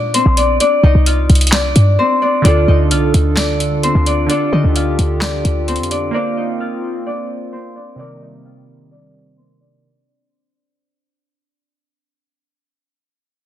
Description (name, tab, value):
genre	hip hop, trap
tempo	130 BPM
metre	4/4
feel	half-time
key	D phrygian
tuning	A4 = 438 Hz
part	Celtic harp	melody	0.0-12.4 s	C4 to F5	-18 LUFS	left 2 dB	low-pass filter, tape echo
part	short 808-style bass	bass	0.0-6.1 s	Bb1 to D3	-14 LUFS	equal	none
part	booming analog drum machine	drums	0.1-6.0 s	handclaps, hi-hat, snare drum	-19 LUFS	equal	none
part	glassy digital keys	accompaniment	2.4-9.9 s	C3 to F5	-21 LUFS	right 2 dB	chorus, low-pass filter
part	hollow soft pad	sustained chords	2.4-9.8 s	C3 to A4	-24 LUFS	equal	chorus, low-pass filter
room	light reverb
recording	dense, heavily limited modern master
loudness	-12 LUFS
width	side -11 dB against mid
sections	0.0-2.4 A section; 2.4-9.8 B section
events	break 2.0-2.4; fade-out 2.4-9.8; filter sweep 2.4-9.8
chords	0.0 Bbsus2; 0.6 Cm; 2.4 Dm; 6.1 Bbsus2; 8.0 Cm7